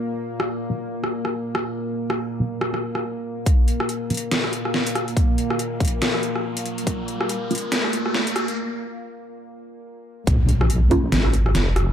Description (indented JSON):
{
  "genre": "deep dubstep",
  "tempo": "141 BPM",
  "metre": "4/4",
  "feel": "swing 59% on 16ths, half-time",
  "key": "Bb minor",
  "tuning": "A4 = 441 Hz",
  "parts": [
    { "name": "bowed-like drone", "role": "sustained chords", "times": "0.0-10.3 s", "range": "Bb2 to Bb3", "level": "-28 LUFS", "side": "equal", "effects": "built-in reverb, vintage 12-bit sampler grit" },
    { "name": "dubstep drum kit", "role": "drums", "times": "0.4-11.9 s", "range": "hi-hat, rim click, snare drum", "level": "-24 LUFS", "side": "equal", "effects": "overdrive, high-pass filter on snare, high-pass filter on hats, high-pass filter on room" },
    { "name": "filtered dub chord stab", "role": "stabs", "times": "0.7-7.7, 10.9-11.1 s", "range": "Bb3 to F#4", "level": "-26 LUFS", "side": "right 2 dB", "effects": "phaser, cassette tape, dub echo" },
    { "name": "electronic kick drum", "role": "drums", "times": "3.5-7.0, 10.3-11.0 s", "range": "none", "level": "-19 LUFS", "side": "equal", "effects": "overdrive" },
    { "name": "riser and impact", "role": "sound effects", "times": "5.1-11.9 s", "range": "none", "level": "-29 LUFS", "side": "equal", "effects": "none" },
    { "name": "deep soft wobble bass", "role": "bass", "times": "10.3-11.9 s", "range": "F1 to Bb1", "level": "-19 LUFS", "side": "equal", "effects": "chorus" }
  ],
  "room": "light reverb, digital ambience",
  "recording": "echo-heavy mix, high-pass filter",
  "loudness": "-20 LUFS",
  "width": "side -9 dB against mid",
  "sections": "0.0-3.5 A section; 3.5-10.3 B section; 10.3-11.9 C section",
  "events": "build-up 3.5-10.3; filter sweep on synth stab 3.5-10.3; riser 5.1-8.6; break 8.6-10.3; drop 10.3-11.9; impact 10.3-11.9",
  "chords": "0.0 B; 3.5 Bbm"
}